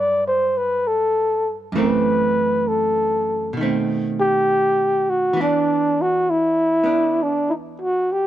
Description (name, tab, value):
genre	jazz ballad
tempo	67 BPM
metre	4/4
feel	swing 67% on 8ths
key	unclear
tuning	A4 = 438 Hz
part	breathy flugelhorn	melody	0.0-8.3 s	D4 to D5	-18 LUFS	equal	none
part	archtop guitar, miked and amplified	accompaniment	0.0-8.3 s	F#2 to D4	-24 LUFS	right 4 dB	none
room	light reverb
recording	close, detailed microphones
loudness	-17 LUFS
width	side -12 dB against mid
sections	0.0-8.3 A section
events	none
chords	0.0 Gmaj7(no3); 1.7 F#m7b5; 3.5 B7b9; 5.3 E5